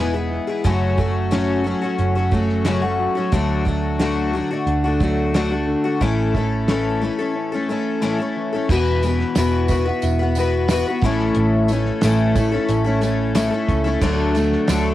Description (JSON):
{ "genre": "folk rock and heartland rock", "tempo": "90 BPM", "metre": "4/4", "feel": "straight", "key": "A major", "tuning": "A4 = 440 Hz", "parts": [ { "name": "picked twelve-string acoustic guitar", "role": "accompaniment", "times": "0.0-14.9 s", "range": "F#2 to B4", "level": "-20 LUFS", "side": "left 4 dB", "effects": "cassette tape" }, { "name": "tonewheel organ", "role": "sustained chords", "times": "0.0-14.9 s", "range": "B3 to A4", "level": "-32 LUFS", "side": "right 1 dB", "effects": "none" }, { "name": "electric guitar through a small old amp", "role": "riff", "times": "0.0-14.9 s", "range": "E2 to F#4", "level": "-25 LUFS", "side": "right 2 dB", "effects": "cassette tape" }, { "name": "hollow-body short-scale picked electric bass", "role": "bass", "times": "0.0-14.9 s", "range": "E1 to D2", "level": "-22 LUFS", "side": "right 2 dB", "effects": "none" }, { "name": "damped 70s drum kit", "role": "drums", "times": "0.6-14.8 s", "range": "crash cymbal, hi-hat, kick drum, snare drum", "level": "-23 LUFS", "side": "right 1 dB", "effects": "cassette tape" }, { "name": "tambourine", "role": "percussion", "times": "9.0-14.8 s", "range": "none", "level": "-37 LUFS", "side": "right 8 dB", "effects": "none" } ], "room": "light reverb", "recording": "home recording on cassette", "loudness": "-17 LUFS", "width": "side -14 dB against mid", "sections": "0.0-8.7 A section; 8.7-14.9 B section", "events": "break 7.4-8.7", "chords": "0.0 E; 0.7 F#m; 3.3 D; 6.0 A; 8.7 Esus2; 11.0 A; 14.0 D" }